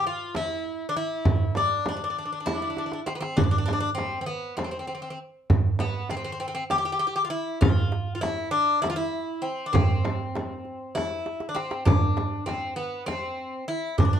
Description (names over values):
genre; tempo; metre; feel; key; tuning
Turkish makam ensemble; 198 BPM (eighths); 7/8; straight; C makam rast from 3.4 s; A4 = 440 Hz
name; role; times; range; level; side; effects
Greek bouzouki; melody; 0.0-14.2 s; B3 to G4; -28 LUFS; left 2 dB; none
darbuka; percussion; 0.0-14.1 s; none; -26 LUFS; right 4 dB; none
frame drum; percussion; 0.3-14.1 s; none; -26 LUFS; left 1 dB; none
room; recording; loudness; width
moderate studio reverb, RT60 0.6 s; dark, warm production; -24 LUFS; side -9 dB against mid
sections
0.0-3.4 A section; 3.4-14.2 B section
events
drum fill 2.8-3.4, 11.3-11.9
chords
none